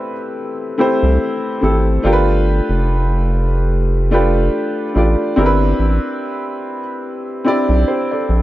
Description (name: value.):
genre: hip hop.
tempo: 72 BPM.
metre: 4/4.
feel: swing 56% on 16ths.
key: unclear.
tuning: A4 = 440 Hz.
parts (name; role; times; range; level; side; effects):
warm upright piano; accompaniment; 0.0-8.4 s; A3 to D5; -17 LUFS; equal; cassette tape, plate reverb.
round analog bass; bass; 1.0-8.4 s; F1 to C2; -15 LUFS; equal; none.
room: light reverb.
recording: dark, warm production.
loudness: -14 LUFS.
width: side -15 dB against mid.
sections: 0.0-8.4 A section.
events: none.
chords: 0.0 Am7; 2.0 G7; 5.4 Cmaj9/G.